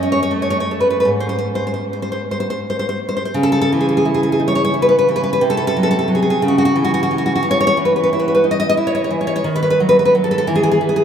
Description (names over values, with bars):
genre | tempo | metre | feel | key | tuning
romantic piece for solo classical guitar | 52-61 BPM (dotted quarters) | 6/8 | rubato | C# minor | A4 = 440 Hz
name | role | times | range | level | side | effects
nylon-string guitar | solo | 0.0-11.0 s | F#2 to D#5 | -14 LUFS | equal | none
room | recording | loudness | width
wet cathedral reverb, RT60 4.9 s | in a vast, echoing space | -14 LUFS | side -8 dB against mid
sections
0.0-3.3 A section; 3.3-11.0 B section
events
none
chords
0.0 F#m; 1.1 N.C.; 3.3 C#m; 5.4 G#7b9/B#; 6.4 C#m; 7.5 C#m9/E; 9.5 D#dim; 10.4 N.C.